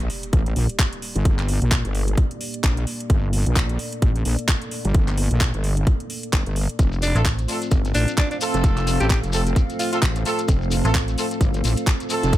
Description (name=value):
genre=bass house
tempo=130 BPM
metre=4/4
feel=swing 58% on 16ths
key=G minor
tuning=A4 = 443 Hz
part: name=dark analog pad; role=sustained chords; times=0.0-12.4 s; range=A3 to D5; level=-33 LUFS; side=left 1 dB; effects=chorus, vintage 12-bit sampler grit, sidechain pumping
part: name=wobble bass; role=bass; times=0.0-12.4 s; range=F1 to Bb1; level=-21 LUFS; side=equal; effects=chorus, overdrive, sidechain pumping
part: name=garage drum kit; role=drums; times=0.0-12.4 s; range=handclaps, hi-hat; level=-28 LUFS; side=right 1 dB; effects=none
part: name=sub drop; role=sound effects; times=0.0-1.3 s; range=none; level=-39 LUFS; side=equal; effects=none
part: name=electronic kick drum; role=drums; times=0.3-12.4 s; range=none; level=-20 LUFS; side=equal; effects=none
part: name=shekere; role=percussion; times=6.8-12.4 s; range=none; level=-32 LUFS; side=left 5 dB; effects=none
part: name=warbly tape-like pad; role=texture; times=7.4-12.4 s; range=C4 to F5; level=-30 LUFS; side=right 2 dB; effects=chorus, built-in reverb, phaser, sidechain pumping
part: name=breathy alto saxophone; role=melody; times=7.0-10.0 s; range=D4 to G4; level=-28 LUFS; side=right 1 dB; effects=tape echo
part: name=clear horn section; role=stabs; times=7.2-12.4 s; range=A3 to A4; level=-27 LUFS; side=right 2 dB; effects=vintage 12-bit sampler grit, sidechain pumping, tape echo
part: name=metallic FM bass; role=bass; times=7.2-7.5, 10.8-11.2 s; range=A1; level=-21 LUFS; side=equal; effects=sidechain pumping
room=little or no reverb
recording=none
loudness=-19 LUFS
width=side -14 dB against mid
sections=0.0-12.4 A section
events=impact 0.0-1.3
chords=0.0 Gm; 6.8 F